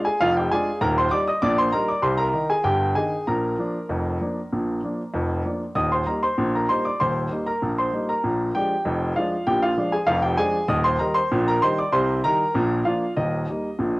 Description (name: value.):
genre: ragtime piano.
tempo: 97 BPM.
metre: 2/4.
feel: straight.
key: Eb major.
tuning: A4 = 440 Hz.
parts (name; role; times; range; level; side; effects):
warm grand piano; solo; 0.0-14.0 s; Eb1 to Eb6; -20 LUFS; equal; cassette tape.
room: light reverb, studio reverb.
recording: home recording on cassette.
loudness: -20 LUFS.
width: side -22 dB against mid.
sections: 0.0-14.0 A section.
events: none.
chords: 0.0 Bb7 (rootless); 0.8 Eb; 2.0 Cm; 3.3 Bb; 5.8 Eb; 8.2 Bb7; 10.7 Eb; 11.9 Cm; 12.6 Bb; 13.2 Eb.